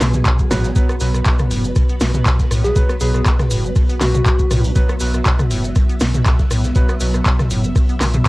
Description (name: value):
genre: acid house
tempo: 120 BPM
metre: 4/4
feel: swing 54% on 16ths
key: unclear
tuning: A4 = 440 Hz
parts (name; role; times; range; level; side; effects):
- string machine, full ensemble; sustained chords; 0.0-8.3 s; F#3 to E5; -25 LUFS; equal; ensemble chorus, sidechain pumping, cassette tape
- acid bass, square; riff; 0.0-8.3 s; A2 to B3; -24 LUFS; equal; wide subtle chorus, sidechain pumping, cassette tape
- round analog bass; bass; 0.0-8.2 s; F#1 to B1; -20 LUFS; equal; sidechain pumping
- punchy analog drum machine; drums; 0.0-8.3 s; handclaps, hi-hat, rim click, snare drum, toms; -20 LUFS; equal; overdrive, cassette tape
- vintage drum kit; drums; 0.0-8.3 s; hi-hat, snare drum; -38 LUFS; equal; none
- maracas; percussion; 0.0-8.3 s; none; -32 LUFS; right 1 dB; none
- electronic kick drum; drums; 0.3-8.3 s; none; -16 LUFS; equal; cassette tape
- clear baby grand piano; stabs; 0.5-7.2 s; F#3 to B4; -27 LUFS; right 2 dB; cassette tape, tape echo
- soft struck synth lead; melody; 2.6-4.7 s; F#4 to G#4; -23 LUFS; left 1 dB; chorus, cassette tape, analog delay
room: little or no reverb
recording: home recording on cassette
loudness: -14 LUFS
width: side -21 dB against mid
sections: 0.0-8.3 A section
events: none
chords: 0.0 B5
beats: 0.26 | 0.76 1.26 1.76 2.26 | 2.76 3.26 3.76 4.26 | 4.76 5.26 5.76 6.26 | 6.76 7.26 7.76 8.26